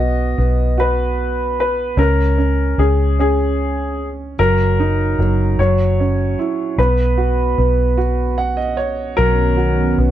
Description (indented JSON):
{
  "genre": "pop",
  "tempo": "50 BPM (dotted quarters)",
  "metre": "6/8",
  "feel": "straight",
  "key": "B major",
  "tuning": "A4 = 440 Hz",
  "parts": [
    { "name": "clear concert grand piano", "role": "melody", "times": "0.0-9.9 s", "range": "G#4 to D#5", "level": "-20 LUFS", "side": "left 2 dB", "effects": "none" },
    { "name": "clear upright piano", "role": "accompaniment", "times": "0.0-10.1 s", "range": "F#3 to F#5", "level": "-21 LUFS", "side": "right 6 dB", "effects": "none" },
    { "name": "vintage muted fingered electric bass", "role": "bass", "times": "0.0-10.1 s", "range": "F#1 to C#2", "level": "-17 LUFS", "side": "left 1 dB", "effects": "none" },
    { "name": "warm analog pad", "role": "sustained chords", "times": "9.2-10.1 s", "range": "D#3 to C#4", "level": "-20 LUFS", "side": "right 1 dB", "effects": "chorus" }
  ],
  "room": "little or no reverb",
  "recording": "dry, close 1970s-style studio recording",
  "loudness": "-14 LUFS",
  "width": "side -12 dB against mid",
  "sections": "0.0-10.1 A section",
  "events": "upright piano fill 8.0-9.2",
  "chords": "0.0 B; 2.0 C#5; 4.4 F#6; 5.6 F#5; 6.8 Badd9",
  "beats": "0.78 | 1.98 3.18 | 4.38 5.58 | 6.78 7.98 | 9.18"
}